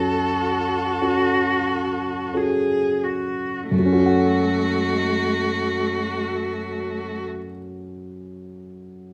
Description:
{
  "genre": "classical, slow romantic movement for piano trio",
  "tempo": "46 BPM",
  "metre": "4/4",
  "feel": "rubato",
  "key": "F# minor",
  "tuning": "A4 = 440 Hz",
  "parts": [
    { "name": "rich violin", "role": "melody", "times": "0.0-7.2 s", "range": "F#4 to A4", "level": "-28 LUFS", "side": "equal", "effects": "none" },
    { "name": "warm cello", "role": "second line", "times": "0.0-7.2 s", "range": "A3 to G#4", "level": "-27 LUFS", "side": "equal", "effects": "none" },
    { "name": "dark grand piano", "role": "accompaniment", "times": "0.0-9.1 s", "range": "F#2 to F#5", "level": "-26 LUFS", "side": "equal", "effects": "none" }
  ],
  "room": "wet stone room reverb, RT60 1.0 s",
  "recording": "none",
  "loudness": "-22 LUFS",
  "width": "mono",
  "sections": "0.0-3.7 A section; 3.7-9.0 B section",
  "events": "slowing down 0.0-3.7",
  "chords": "0.0 F#m",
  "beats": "1.02 2.36 | 3.72 5.03 6.32 7.64"
}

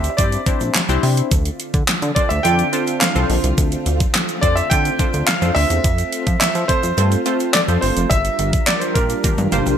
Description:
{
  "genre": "dance-pop",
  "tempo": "106 BPM",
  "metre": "4/4",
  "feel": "straight",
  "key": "unclear",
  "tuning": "A4 = 440 Hz",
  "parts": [
    { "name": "warm concert grand piano", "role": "melody", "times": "0.0-9.8 s", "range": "Bb4 to G5", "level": "-21 LUFS", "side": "right 1 dB", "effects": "wide subtle chorus" },
    { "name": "funky polysynth comp", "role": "accompaniment", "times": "0.0-9.8 s", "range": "A3 to D5", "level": "-23 LUFS", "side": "left 1 dB", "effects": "chorus, sidechain pumping" },
    { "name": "chorused synth bass", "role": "bass", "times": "0.0-9.8 s", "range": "F1 to F3", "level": "-19 LUFS", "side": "equal", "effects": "sidechain pumping" },
    { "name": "pop drum kit", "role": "drums", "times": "0.0-9.8 s", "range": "handclaps, hi-hat, kick drum, snare drum, toms", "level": "-19 LUFS", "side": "equal", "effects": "overdrive, gated reverb" },
    { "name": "egg shaker", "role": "percussion", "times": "0.0-9.8 s", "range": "none", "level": "-33 LUFS", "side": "right 8 dB", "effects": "none" },
    { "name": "ensemble organ-string", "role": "sustained chords", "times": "1.3-9.8 s", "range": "D3 to Bb4", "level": "-26 LUFS", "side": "right 1 dB", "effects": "ensemble chorus, sidechain pumping" }
  ],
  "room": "light reverb, digital ambience",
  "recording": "bright 1980s-style digital production",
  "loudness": "-15 LUFS",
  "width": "side -9 dB against mid",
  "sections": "0.0-9.8 A section",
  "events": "drum fill 9.2-9.8",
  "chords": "0.0 Cadd9; 1.3 Dm7; 5.8 F; 8.1 Gm7",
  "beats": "0.18 0.75 | 1.31 1.88 2.45 3.01 | 3.58 4.14 4.71 5.28 | 5.84 6.41 6.98 7.54 | 8.11 8.67 9.24"
}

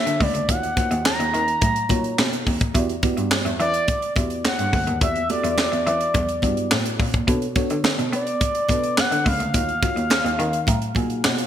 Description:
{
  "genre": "early-eighties boogie funk",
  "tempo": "106 BPM",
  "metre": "4/4",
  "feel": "straight",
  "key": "unclear",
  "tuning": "A4 = 442 Hz",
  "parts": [
    { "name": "expressive synth lead", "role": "melody", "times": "0.0-11.2 s", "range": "D5 to A#5", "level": "-24 LUFS", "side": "equal", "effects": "chorus" },
    { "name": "mellow FM electric piano", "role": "accompaniment", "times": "0.0-11.5 s", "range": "A#3 to C6", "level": "-29 LUFS", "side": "equal", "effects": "chorus, phaser" },
    { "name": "bright cello", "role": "bass", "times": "0.1-11.5 s", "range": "C#2 to B3", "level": "-26 LUFS", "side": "equal", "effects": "none" },
    { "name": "tight funk drum kit", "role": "drums", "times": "0.1-11.5 s", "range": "handclaps, hi-hat, kick drum, snare drum", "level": "-22 LUFS", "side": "equal", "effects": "gated reverb" },
    { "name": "congas", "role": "percussion", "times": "0.2-11.4 s", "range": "none", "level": "-32 LUFS", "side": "right 5 dB", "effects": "none" }
  ],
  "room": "moderate lush hall reverb, RT60 2.4 s",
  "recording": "bright 1980s-style digital production",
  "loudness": "-19 LUFS",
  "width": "side -10 dB against mid",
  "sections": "0.0-11.5 A section",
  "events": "FM electric piano fill 10.1-11.5",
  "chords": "0.5 D#m9; 2.8 Em9; 7.3 Bm9; 9.5 D#m9",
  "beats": "| 0.49 1.05 1.62 2.19 | 2.75 3.32 3.88 4.45 | 5.02 5.58 6.15 6.71 | 7.28 7.85 8.41 8.98 | 9.54 10.11 10.68 11.24"
}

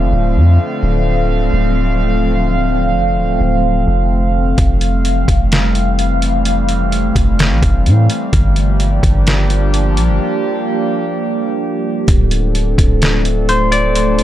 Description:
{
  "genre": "hip hop, atmospheric cloud-rap",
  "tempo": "128 BPM",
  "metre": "4/4",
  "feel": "half-time",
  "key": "D minor",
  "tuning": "A4 = 435 Hz",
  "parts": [
    { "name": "warbly tape-like pad", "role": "sustained chords", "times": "0.0-14.2 s", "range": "D3 to F5", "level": "-17 LUFS", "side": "equal", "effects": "chorus, built-in reverb, phaser, sidechain pumping" },
    { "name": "long sustained 808-style bass", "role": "bass", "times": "0.0-14.2 s", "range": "D1 to A2", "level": "-14 LUFS", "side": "equal", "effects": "none" },
    { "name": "trip hop sampler-style drum kit", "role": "drums", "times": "4.6-14.2 s", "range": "hi-hat, kick drum, snare drum", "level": "-15 LUFS", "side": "equal", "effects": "none" },
    { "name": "concert harp", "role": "melody", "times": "13.5-14.2 s", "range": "C5 to D5", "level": "-14 LUFS", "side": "equal", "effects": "digital delay" }
  ],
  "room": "digital ambience",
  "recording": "none",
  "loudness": "-12 LUFS",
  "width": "side -12 dB against mid",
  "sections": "0.0-12.1 A section; 12.1-14.2 B section",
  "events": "break 10.2-12.1",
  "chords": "0.0 Dm7; 4.6 Fmaj9; 8.3 Gm7; 12.1 Dm7",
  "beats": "0.36 | 0.83 1.30 1.77 2.24 | 2.71 3.17 3.64 4.11 | 4.58 5.05 5.52 5.99 | 6.46 6.92 7.39 7.86 | 8.33 8.80 9.27 9.74 | 10.21 10.67 11.14 11.61 | 12.08 12.55 13.02 13.49 | 13.96"
}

